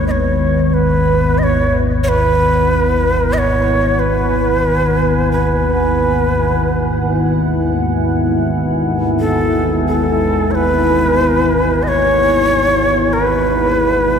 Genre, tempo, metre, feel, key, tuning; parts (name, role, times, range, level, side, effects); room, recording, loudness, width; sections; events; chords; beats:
dark ambient drone; 46 BPM; 4/4; straight; A4 = 439 Hz
breathy shakuhachi; melody; 0.0-14.2 s; A4 to D#5; -16 LUFS; right 1 dB; ping-pong delay
deep dark ambient pad; sustained chords; 0.0-14.2 s; B3 to G#5; -18 LUFS; equal; chorus, built-in reverb
analog drone; drone; 0.0-14.2 s; G#1 to D#2; -17 LUFS; left 1 dB; chorus
wet plate reverb, RT60 3.5 s; dreamy mix soaked in reverb; -12 LUFS; side -7 dB against mid
0.0-14.2 A section
filter sweep on synth drone 0.0-14.2
0.0 Eadd9/G#
0.07 1.38 | 2.68 3.98 5.29 6.59 | 7.90 9.20 10.51 11.81 | 13.12